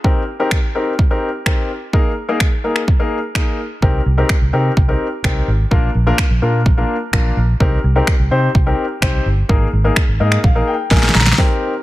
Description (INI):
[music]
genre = dance-pop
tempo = 127 BPM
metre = 4/4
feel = straight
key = C minor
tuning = A4 = 441 Hz
[part]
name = warm baby grand piano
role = accompaniment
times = 0.0-11.7 s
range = Bb3 to Bb5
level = -19 LUFS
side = left 2 dB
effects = sidechain pumping
[part]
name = deep house drum kit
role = drums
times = 0.0-11.5 s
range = finger snaps, kick drum, snare drum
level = -15 LUFS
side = equal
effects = soft clipping on snare
[part]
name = vintage muted fingered electric bass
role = bass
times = 3.8-11.3 s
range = G1 to C3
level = -16 LUFS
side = equal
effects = sidechain pumping
[sound]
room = little or no reverb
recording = dense, heavily limited modern master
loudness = -13 LUFS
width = side -16 dB against mid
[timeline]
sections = 0.0-11.4 A section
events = grand piano fill 10.0-11.4; drum fill 10.9-11.4, 11.4-11.8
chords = 0.0 Cm7; 1.9 Absus2; 3.8 Cm7; 5.7 Bb; 7.6 Cm7; 9.5 Absus2